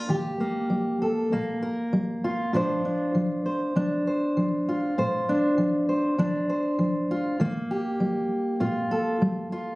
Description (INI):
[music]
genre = folk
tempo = 99 BPM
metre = 4/4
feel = straight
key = unclear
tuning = A4 = 440 Hz
[part]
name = fingerpicked steel-string acoustic guitar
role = solo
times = 0.0-9.8 s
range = Bb2 to C5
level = -23 LUFS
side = equal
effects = none
[sound]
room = moderate studio ambience, RT60 0.5 s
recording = recorded on a phone in the room, studio reverb, compression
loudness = -23 LUFS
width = side -21 dB against mid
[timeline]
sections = 0.0-7.4 A section; 7.4-9.8 B section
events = build-up 0.0-7.4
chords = 0.0 Ebadd9; 2.5 Bbadd9; 7.4 Ebadd9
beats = | 0.10 0.71 1.32 1.93 | 2.54 3.15 3.76 4.37 | 4.97 5.58 6.19 6.79 | 7.40 8.01 8.61 9.22